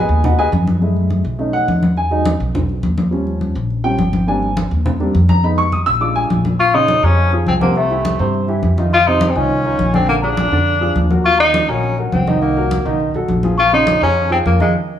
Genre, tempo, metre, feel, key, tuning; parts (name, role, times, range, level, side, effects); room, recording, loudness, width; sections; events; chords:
Afro-Cuban jazz; 206 BPM; 4/4; straight; Bb minor from 6.6 s; A4 = 438 Hz
warm baby grand piano; accompaniment; 0.0-14.7 s; C3 to Fb6; -19 LUFS; right 1 dB
upright bass; bass; 0.0-14.7 s; Ab1 to G2; -18 LUFS; equal
congas; percussion; 0.1-14.7 s; -20 LUFS; left 1 dB
warm tenor saxophone; melody; 6.6-14.7 s; Ab3 to F4; -16 LUFS; left 1 dB
celesta; second line; 6.6-14.7 s; E5 to Db6; -24 LUFS; left 5 dB
moderate large studio reverb, RT60 1.4 s; -13 LUFS; side -10 dB against mid
0.0-6.6 A section; 6.6-15.0 B section
grand piano solo 0.0-6.6; band accent 14.7
0.0 Abm7; 0.8 Gbm7; 1.4 B7; 2.0 Emaj9; 3.1 Eb7; 4.3 Abmaj9#11; 5.4 Fm7b5; 6.0 Bb7; 6.6 Bbm9; 7.8 C; 8.9 Fm7; 10.1 Bb7b13; 11.3 Ebm7; 12.4 Cm7b5; 13.0 B7#11; 13.6 Bbm9